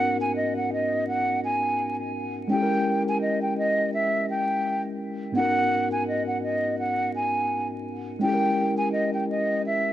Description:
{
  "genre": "hip hop",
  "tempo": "84 BPM",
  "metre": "4/4",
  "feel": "swing 55% on 16ths",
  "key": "G# minor",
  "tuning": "A4 = 440 Hz",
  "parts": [
    { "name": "breathy mellow silver concert flute", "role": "melody", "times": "0.0-9.9 s", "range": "D#5 to G#5", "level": "-25 LUFS", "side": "right 1 dB", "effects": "high-pass filter, low-pass filter, digital delay" },
    { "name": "mellow tine electric piano", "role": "accompaniment", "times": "0.0-9.9 s", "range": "G#2 to A#4", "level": "-27 LUFS", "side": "left 1 dB", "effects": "medium stereo tremolo, high-pass filter, low-pass filter" }
  ],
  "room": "moderate plate reverb, RT60 3.6 s",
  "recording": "vinyl crackle",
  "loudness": "-23 LUFS",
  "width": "side -12 dB against mid",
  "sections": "0.0-9.9 A section",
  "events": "none",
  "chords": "0.0 G#m11; 2.5 D#7b9 (rootless); 5.4 G#m11; 8.2 D#7b9",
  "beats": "0.37 1.08 1.80 | 2.51 3.23 3.94 4.65 | 5.37 6.08 6.80 7.51 | 8.22 8.94 9.65"
}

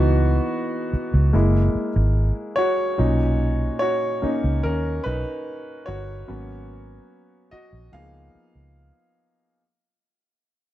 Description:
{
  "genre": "lush 1970s-style soul",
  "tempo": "73 BPM",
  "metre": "4/4",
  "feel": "straight",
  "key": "unclear",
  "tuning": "A4 = 440 Hz",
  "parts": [
    { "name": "warm concert grand piano", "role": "accompaniment", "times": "0.0-9.6 s", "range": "A#2 to E#5", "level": "-24 LUFS", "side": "equal", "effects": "none" },
    { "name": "vintage muted fingered electric bass", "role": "bass", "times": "0.0-8.9 s", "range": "F#1 to D#2", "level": "-20 LUFS", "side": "equal", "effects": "none" }
  ],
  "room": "studio ambience",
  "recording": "dark, warm production",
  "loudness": "-19 LUFS",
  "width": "side -14 dB against mid",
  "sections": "0.0-9.6 A section",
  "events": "fade-out 0.0-9.6; grand piano solo 0.0-9.6",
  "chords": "0.0 C#m7; 1.3 F#9; 3.0 Bmaj9; 6.3 G#m11; 7.9 C#13",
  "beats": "0.51 1.33 2.16 | 2.99 3.81 4.64 5.46 | 6.29 7.11 7.94 8.76"
}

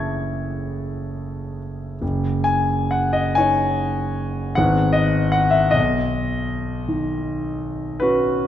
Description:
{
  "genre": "classical, impressionist solo piano",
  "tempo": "43-54 BPM (dotted quarters)",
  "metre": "9/8",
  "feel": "rubato",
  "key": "F# dorian",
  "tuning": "A4 = 440 Hz",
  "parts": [
    { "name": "clear concert grand piano", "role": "solo", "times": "0.0-8.5 s", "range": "F#1 to G#6", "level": "-19 LUFS", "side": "left 1 dB", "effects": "none" }
  ],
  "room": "moderate concert hall reverb, RT60 1.7 s",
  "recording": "dark, warm production",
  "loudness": "-19 LUFS",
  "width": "side -10 dB against mid",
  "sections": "0.0-2.0 A section; 2.0-8.5 B section",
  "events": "none",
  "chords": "0.0 F#m11; 2.0 F#5; 4.6 G#m; 5.7 Badd9",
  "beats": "0.70 | 2.02 3.37 4.57 | 5.75 6.89 8.02"
}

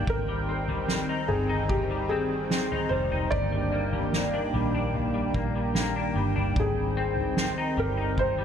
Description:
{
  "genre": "dream pop",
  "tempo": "74 BPM",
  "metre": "4/4",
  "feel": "straight",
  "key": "unclear",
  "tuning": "A4 = 440 Hz",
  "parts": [
    { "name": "warm analog pad", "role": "sustained chords", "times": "0.0-8.4 s", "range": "Eb3 to G5", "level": "-30 LUFS", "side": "right 1 dB", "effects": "chorus, shimmer reverb" },
    { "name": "semi-hollow electric guitar", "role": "arpeggios", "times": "0.0-8.4 s", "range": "G2 to Eb4", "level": "-32 LUFS", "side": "left 4 dB", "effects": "ensemble chorus, ping-pong delay, shimmer reverb" },
    { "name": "vintage muted fingered electric bass", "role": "bass", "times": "0.0-8.4 s", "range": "F1 to Bb1", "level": "-32 LUFS", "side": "equal", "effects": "none" },
    { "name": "felt-muted upright piano", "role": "melody", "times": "0.1-8.4 s", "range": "G4 to D5", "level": "-31 LUFS", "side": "equal", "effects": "ping-pong delay, shimmer reverb" },
    { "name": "soft-mallet drum kit", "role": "drums", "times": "0.1-8.4 s", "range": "kick drum, snare drum, toms", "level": "-32 LUFS", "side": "equal", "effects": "none" }
  ],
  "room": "moderate huge ambient reverb, RT60 5.8 s",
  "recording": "none",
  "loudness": "-24 LUFS",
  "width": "side -8 dB against mid",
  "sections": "0.0-8.4 A section",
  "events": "none",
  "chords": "0.1 Abmaj7; 3.3 Ebmaj7/G; 6.6 Abmaj7",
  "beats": "| 0.07 0.88 1.69 2.50 | 3.31 4.13 4.94 5.75 | 6.56 7.37 8.18"
}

